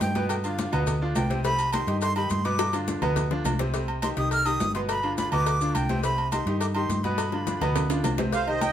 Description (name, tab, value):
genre	latin, salsa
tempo	209 BPM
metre	4/4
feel	straight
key	C harmonic minor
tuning	A4 = 439 Hz
part	breathy bright jazz flute	melody	0.0-8.0 s	F5 to F6	-29 LUFS	right 1 dB	none
part	bright upright piano	accompaniment	0.0-8.7 s	B2 to C5	-30 LUFS	equal	none
part	hollow-body short-scale fingered electric bass	bass	0.0-8.7 s	G1 to G2	-28 LUFS	equal	none
part	congas	percussion	0.0-8.7 s	none	-33 LUFS	left 3 dB	none
part	cowbell and bongos	percussion	0.0-8.7 s	none	-34 LUFS	left 8 dB	none
part	maracas	percussion	0.0-8.7 s	none	-41 LUFS	left 4 dB	none
part	timbales and agogo bells	percussion	0.0-8.7 s	none	-33 LUFS	right 2 dB	none
part	accordion	melody	8.3-8.7 s	C5 to G5	-25 LUFS	right 5 dB	light tremolo tuning
room	moderate studio reverb, RT60 0.8 s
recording	minimal, uncompressed stereo recording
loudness	-23 LUFS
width	side -10 dB against mid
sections	0.0-8.3 A section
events	drum fill 2.6-3.7, 7.2-8.3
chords	0.3 G7; 1.4 Cm; 2.6 G7; 3.7 Cm; 4.9 G7; 6.0 Cm; 7.2 G7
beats	0.01 | 0.30 0.58 0.87 1.16 | 1.44 1.73 2.02 2.31 | 2.59 2.88 3.17 3.45 | 3.74 4.03 4.31 4.60 | 4.89 5.17 5.46 5.75 | 6.04 6.32 6.61 6.90 | 7.18 7.47 7.76 8.04 | 8.33 8.62